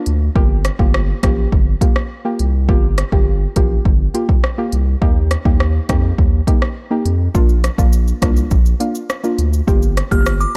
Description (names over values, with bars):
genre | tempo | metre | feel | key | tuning
dancehall | 103 BPM | 4/4 | straight | G minor | A4 = 444 Hz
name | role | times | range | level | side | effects
soft round pluck | accompaniment | 0.0-10.5 s | Bb3 to G4 | -25 LUFS | equal | chorus
saturated sub bass | bass | 0.1-10.5 s | G1 to F2 | -19 LUFS | equal | none
deep house drum kit | drums | 0.1-10.5 s | hi-hat, kick drum, rim click, shaker | -18 LUFS | equal | none
glassy synth bell | melody | 10.1-10.5 s | D6 to F6 | -22 LUFS | equal | chorus
room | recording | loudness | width
little or no reverb | dark, warm production | -16 LUFS | mono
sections
0.0-9.7 A section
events
none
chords
0.4 Gm7; 5.0 Eb; 7.3 Bb; 9.7 Gm7